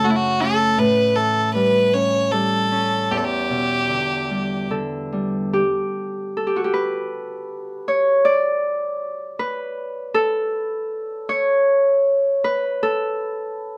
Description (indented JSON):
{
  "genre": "celtic folk, Celtic slow air",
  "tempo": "72-83 BPM",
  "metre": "3/4",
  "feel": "rubato",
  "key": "E dorian",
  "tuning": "A4 = 440 Hz",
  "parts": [
    { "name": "rich fiddle", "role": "melody", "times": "0.0-4.7 s", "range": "E4 to C#5", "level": "-21 LUFS", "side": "equal", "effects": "plate reverb" },
    { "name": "Celtic harp", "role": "accompaniment", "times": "0.0-13.8 s", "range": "E2 to D5", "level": "-22 LUFS", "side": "equal", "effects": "none" }
  ],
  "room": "moderate small room reverb, RT60 0.5 s",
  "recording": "none",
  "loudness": "-21 LUFS",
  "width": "mono",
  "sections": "0.0-5.5 A section; 5.5-13.8 B section",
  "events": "harp solo 5.5-13.8",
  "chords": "0.0 F#m; 0.8 A7; 3.1 Em7; 5.5 N.C."
}